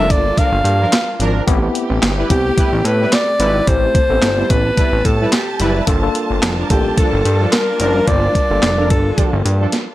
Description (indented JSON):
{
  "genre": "early-eighties boogie funk",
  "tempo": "109 BPM",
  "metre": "4/4",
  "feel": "swing 56% on 16ths",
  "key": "unclear",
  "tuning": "A4 = 440 Hz",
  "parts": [
    { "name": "breathy alto saxophone", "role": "melody", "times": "0.0-9.4 s", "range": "G4 to F5", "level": "-18 LUFS", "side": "equal", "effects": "none" },
    { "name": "analog synth brass", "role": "second line", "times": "0.0-9.7 s", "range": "F3 to C5", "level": "-23 LUFS", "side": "equal", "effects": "chorus" },
    { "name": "tine electric piano", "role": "accompaniment", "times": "0.0-9.6 s", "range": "A3 to C5", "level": "-22 LUFS", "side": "left 2 dB", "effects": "overdrive, medium stereo tremolo" },
    { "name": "warm studio string section", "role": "sustained chords", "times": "0.0-9.9 s", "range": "C3 to A5", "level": "-25 LUFS", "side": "right 1 dB", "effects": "none" },
    { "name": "chorused synth bass", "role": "bass", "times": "0.0-9.7 s", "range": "F1 to A2", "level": "-18 LUFS", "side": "equal", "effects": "none" },
    { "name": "crisp 8-bit digital drum machine", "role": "drums", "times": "0.1-9.9 s", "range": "handclaps, hi-hat, kick drum, snare drum", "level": "-17 LUFS", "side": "equal", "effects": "none" }
  ],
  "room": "digital ambience",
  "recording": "none",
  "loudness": "-13 LUFS",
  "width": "side -15 dB against mid",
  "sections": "0.0-9.9 A section",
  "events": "drum fill 9.7",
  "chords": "0.0 Gm9; 1.5 Am9; 5.9 Gm9"
}